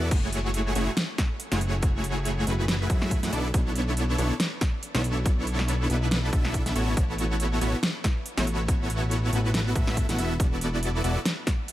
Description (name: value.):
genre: future bass.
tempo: 140 BPM.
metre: 4/4.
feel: swing 55% on 16ths, half-time.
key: A major.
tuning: A4 = 439 Hz.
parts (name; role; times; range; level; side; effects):
dense compressed supersaw; riff; 0.0-11.2 s; A3 to F#5; -29 LUFS; equal; sidechain pumping, tape echo.
fat analog bass; bass; 0.0-11.2 s; E1 to F#2; -27 LUFS; equal; sidechain pumping.
big-room dance drum kit; drums; 0.1-11.7 s; crash cymbal, hi-hat, snare drum; -30 LUFS; equal; none.
electronic kick drum; drums; 0.1-11.6 s; none; -25 LUFS; equal; none.
room: digital ambience.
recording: none.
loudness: -24 LUFS.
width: side -14 dB against mid.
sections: 0.0-11.7 A section.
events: none.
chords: 0.1 F#m9; 3.3 Bm11; 6.8 A69; 10.2 E9sus4.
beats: | 0.11 0.54 0.97 1.40 | 1.83 2.25 2.68 3.11 | 3.54 3.97 4.40 4.83 | 5.25 5.68 6.11 6.54 | 6.97 7.40 7.83 8.26 | 8.68 9.11 9.54 9.97 | 10.40 10.83 11.26 11.68.